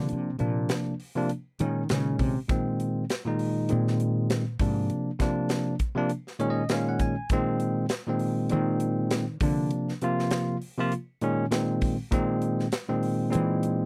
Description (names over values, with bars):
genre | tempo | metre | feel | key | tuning
electric jazz fusion | 100 BPM | 4/4 | swing 56% on 16ths | unclear | A4 = 439 Hz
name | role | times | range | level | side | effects
barky tine electric piano | accompaniment | 0.0-13.9 s | Bb2 to Ab5 | -29 LUFS | equal | none
woody fretless electric bass | bass | 0.0-4.9, 8.5-9.7, 13.4-13.9 s | Ab2 to E3 | -31 LUFS | equal | none
crisp fusion drum kit | drums | 0.1-13.8 s | hi-hat, kick drum, snare drum | -32 LUFS | equal | none
room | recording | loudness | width
light reverb | dry, close 1970s-style studio recording | -28 LUFS | mono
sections
0.0-13.9 A section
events
fretless electric bass solo 0.0-13.9; tine electric piano fill 6.1-7.3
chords
0.0 Bb; 1.3 Eb5; 2.5 Bb9sus4; 4.6 Bb7/Ab; 6.1 Eb5; 7.3 Bb9sus4; 9.4 Bb; 10.9 Eb5; 12.1 Ab; 13.3 C7alt/Bb